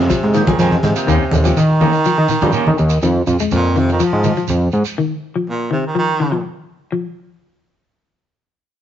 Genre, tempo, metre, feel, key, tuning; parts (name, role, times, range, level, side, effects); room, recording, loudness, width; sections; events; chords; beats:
afrobeat; 123 BPM; 4/4; straight; A4 = 443 Hz
breathy baritone saxophone; melody; 0.0-6.4 s; Bb2 to F3; -20 LUFS; right 2 dB
percussive tonewheel organ; accompaniment; 0.0-1.1 s; F3 to G4; -26 LUFS; right 2 dB; slow rotary speaker
fat analog bass; bass; 0.0-4.8 s; Eb2 to Eb3; -15 LUFS; equal
crunchy breakbeat drum kit; drums; 0.0-1.1 s; hi-hat, kick drum, snare drum; -23 LUFS; right 1 dB
clean electric guitar; arpeggios; 0.1-7.1 s; Eb3 to Ab3; -20 LUFS; left 5 dB; warbly pitch drift
shekere; percussion; 0.1-5.0 s; -27 LUFS; right 9 dB
semi-hollow electric guitar; stabs; 0.2-2.9 s; Eb3 to Ab4; -23 LUFS; right 3 dB; spring reverb
congas; percussion; 0.5-2.8 s; -21 LUFS; equal
moderate stone room reverb, RT60 1.1 s; rough rehearsal-room recording, nothing above 7.8 kHz; -14 LUFS; side -10 dB against mid
0.0-6.9 A section; 6.9-8.8 B section
baritone saxophone solo 0.0-6.9
0.0 Fm7; 1.1 Eb7; 3.0 Fm7; 5.0 Bbsus4 (rootless); 6.9 N.C.
0.10 0.59 | 1.08 1.56 2.05 2.54 | 3.02 3.51 4.00 4.49 | 4.97 5.46 5.95 6.43 | 6.92